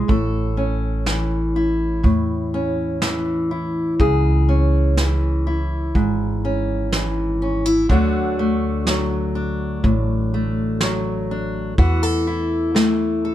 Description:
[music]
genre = acoustic folk duo or small band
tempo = 62 BPM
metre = 4/4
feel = straight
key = A major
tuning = A4 = 440 Hz
[part]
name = fingerpicked steel-string acoustic guitar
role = accompaniment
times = 0.0-13.3 s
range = G#2 to A4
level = -20 LUFS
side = left 1 dB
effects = none
[part]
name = upright bass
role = bass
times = 0.0-13.3 s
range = G#1 to E2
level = -22 LUFS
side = equal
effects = none
[part]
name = soft brush drum kit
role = drums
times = 0.1-13.0 s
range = kick drum, snare drum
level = -21 LUFS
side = right 1 dB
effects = none
[sound]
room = little or no reverb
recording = none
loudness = -18 LUFS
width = side -12 dB against mid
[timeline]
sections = 0.1-13.3 A section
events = none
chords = 0.1 A; 4.0 C#m; 7.9 D; 11.8 Esus4

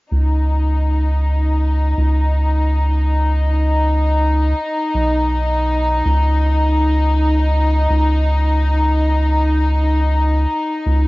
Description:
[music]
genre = trip hop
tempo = 81 BPM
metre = 4/4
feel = swing 55% on 16ths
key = unclear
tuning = A4 = 440 Hz
[part]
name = warm studio string section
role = sustained chords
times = 0.1-11.1 s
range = D#4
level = -19 LUFS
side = left 1 dB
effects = vintage 12-bit sampler grit, cassette tape
[part]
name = round analog bass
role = bass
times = 0.1-11.1 s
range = B1 to C#2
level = -15 LUFS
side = equal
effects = none
[sound]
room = little or no reverb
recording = home recording on cassette, nothing above 7.5 kHz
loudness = -14 LUFS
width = side -22 dB against mid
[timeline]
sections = 0.1-11.1 A section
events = none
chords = 0.1 C#sus2

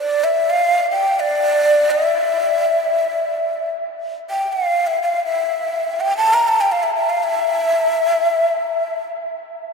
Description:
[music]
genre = turkish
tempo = free time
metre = none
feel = none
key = unclear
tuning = A4 = 440 Hz
[part]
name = breathy ney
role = solo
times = 0.0-9.0 s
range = D5 to Bb5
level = -16 LUFS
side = equal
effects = tape echo
[sound]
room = wet cathedral reverb, RT60 6.1 s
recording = in a vast, echoing space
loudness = -16 LUFS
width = side -4 dB against mid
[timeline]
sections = 0.0-9.7 A section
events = none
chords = none

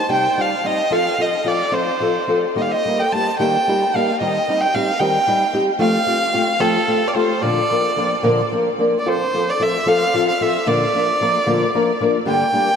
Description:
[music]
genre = mexican folk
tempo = 74 BPM (dotted quarters)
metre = 6/8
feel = rubato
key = Bb major, F major from 9.1 s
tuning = A4 = 440 Hz
[part]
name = warm violin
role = melody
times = 0.0-12.8 s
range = A4 to A5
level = -18 LUFS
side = right 1 dB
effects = ping-pong delay
[part]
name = nylon-string guitar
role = accompaniment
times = 0.1-12.7 s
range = G2 to Bb4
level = -19 LUFS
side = left 1 dB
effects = lush chorus
[sound]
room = wet huge ambient reverb, RT60 7.4 s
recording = dreamy mix soaked in reverb, lossy compression artefacts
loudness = -16 LUFS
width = side -7 dB against mid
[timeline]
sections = 0.0-9.1 A section; 9.1-12.8 B section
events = none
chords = 0.0 Cm; 0.9 F; 2.6 Eb; 4.2 Cm/Eb; 5.8 Fadd9; 7.4 Bb; 9.1 F; 10.7 Bb; 12.3 Gm

